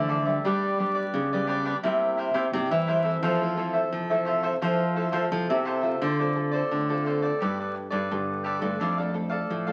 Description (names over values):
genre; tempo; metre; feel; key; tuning
samba; 86 BPM; 4/4; straight; F major, D minor from 6.0 s; A4 = 439 Hz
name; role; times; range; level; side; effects
cavaquinho; accompaniment; 0.0-9.7 s; D4 to F5; -29 LUFS; equal; none
nylon-string guitar; accompaniment; 0.0-9.7 s; F2 to A4; -34 LUFS; equal; none
nylon-string guitar; bass; 0.0-9.7 s; F2 to G3; -31 LUFS; equal; none
room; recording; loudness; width
moderate studio reverb, RT60 0.8 s; very old 78 rpm record, vinyl crackle; -26 LUFS; mono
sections
0.0-6.0 A section; 6.0-9.7 B section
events
none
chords
0.5 G; 1.8 C7; 3.2 Fmaj7; 6.0 Dm7; 7.4 Gadd9; 8.8 Dm/F